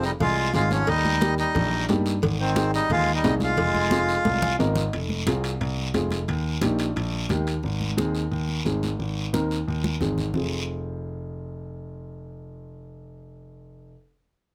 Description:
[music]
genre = latin, cumbia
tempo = 177 BPM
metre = 4/4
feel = straight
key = F minor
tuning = A4 = 441 Hz
[part]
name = accordion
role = melody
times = 0.0-4.6 s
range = C4 to F4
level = -27 LUFS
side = equal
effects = none
[part]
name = dark upright piano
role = accompaniment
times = 0.0-13.9 s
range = Bb3 to Ab5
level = -30 LUFS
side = equal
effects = none
[part]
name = dark grand piano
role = bass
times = 0.0-13.9 s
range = F1 to G2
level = -30 LUFS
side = equal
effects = none
[part]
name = guiro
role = percussion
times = 0.0-10.4 s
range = none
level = -38 LUFS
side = equal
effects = none
[part]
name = bright trombone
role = second line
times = 0.1-4.6 s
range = Eb3 to Ab3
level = -32 LUFS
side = equal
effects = none
[part]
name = congas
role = percussion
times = 0.2-10.4 s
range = none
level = -32 LUFS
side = equal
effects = none
[part]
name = cowbell and timbales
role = percussion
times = 0.2-7.6 s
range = none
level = -35 LUFS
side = equal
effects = none
[sound]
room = light reverb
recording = close, detailed microphones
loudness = -24 LUFS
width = mono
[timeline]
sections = 0.0-4.9 A section; 4.9-10.4 B section; 10.4-13.1 C section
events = drum fill 4.3-4.9, 9.8-10.4; upright piano fill 4.3-4.9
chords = 0.0 Fm; 0.9 Eb; 2.2 Ab; 3.6 Fm; 6.3 Eb; 7.6 Ab; 10.4 Fm

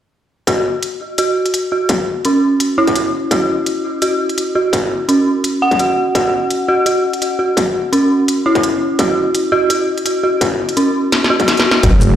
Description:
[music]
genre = half-time drum and bass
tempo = 169 BPM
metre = 4/4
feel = swing 54% on 16ths, half-time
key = F# minor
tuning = A4 = 439 Hz
[part]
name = dark detuned synth bell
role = arpeggios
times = 0.5-12.0 s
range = C#4 to F#5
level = -14 LUFS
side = right 1 dB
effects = chorus, tremolo, low-pass filter, digital delay
[part]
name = electronic kick drum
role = drums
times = 0.5-11.9 s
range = none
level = -18 LUFS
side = equal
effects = distortion, high-pass filter on kick, small room reverb
[part]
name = industrial drum kit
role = drums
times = 0.5-12.1 s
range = hi-hat, shaker, snare drum, toms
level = -19 LUFS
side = left 1 dB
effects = small room reverb
[part]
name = dark analog pad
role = sustained chords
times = 12.0-12.2 s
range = A3 to C#5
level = -19 LUFS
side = right 3 dB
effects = chorus, sidechain pumping
[part]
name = phased detuned saw bass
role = bass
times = 11.8-12.2 s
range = F#1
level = -12 LUFS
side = equal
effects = phaser
[sound]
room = moderate digital room reverb, RT60 1.2 s, digital ambience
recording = played on a big sound system in a bare room, stone room reverb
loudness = -13 LUFS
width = side -10 dB against mid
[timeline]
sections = 0.5-11.8 A section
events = filter sweep on synth bell 0.5-11.8; drum fill 11.1-11.8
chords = 0.5 F#5

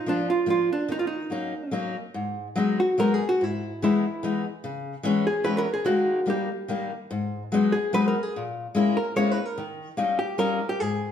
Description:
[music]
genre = musette waltz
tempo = 146 BPM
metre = 3/4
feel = straight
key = G# minor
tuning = A4 = 440 Hz
[part]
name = hollow-body jazz guitar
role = melody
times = 0.0-11.1 s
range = D4 to C#5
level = -25 LUFS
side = right 2 dB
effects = none
[part]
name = picked steel-string acoustic guitar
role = accompaniment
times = 0.1-11.1 s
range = G#2 to F4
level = -25 LUFS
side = left 3 dB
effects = none
[sound]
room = wet stone room reverb, RT60 1.0 s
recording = band playing live in one room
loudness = -23 LUFS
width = side -9 dB against mid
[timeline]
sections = 0.0-2.2 A section; 2.2-11.1 B section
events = none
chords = 0.0 Bb; 0.9 Ebm7; 2.2 G#m7; 3.4 Emaj7/G#; 4.6 C#m7; 5.9 D#sus4; 6.3 D#; 7.1 G#m7; 8.3 A#m7b5; 9.6 D#7

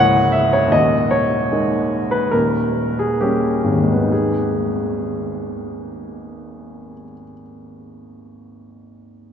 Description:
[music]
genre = classical, romantic character piece for solo piano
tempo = 64-81 BPM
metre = 4/4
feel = rubato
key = G# minor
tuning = A4 = 438 Hz
[part]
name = warm baby grand piano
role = solo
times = 0.0-9.3 s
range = C#1 to F#5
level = -16 LUFS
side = equal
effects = none
[sound]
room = wet cathedral reverb, RT60 6.3 s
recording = in a vast, echoing space, nothing above 8.0 kHz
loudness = -16 LUFS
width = side -8 dB against mid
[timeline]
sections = 0.0-4.1 A section; 4.1-7.6 B section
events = slowing down 0.0-4.1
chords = 0.0 A#m7b5/C#; 0.7 D#7sus4; 2.3 D#7; 4.1 G#m

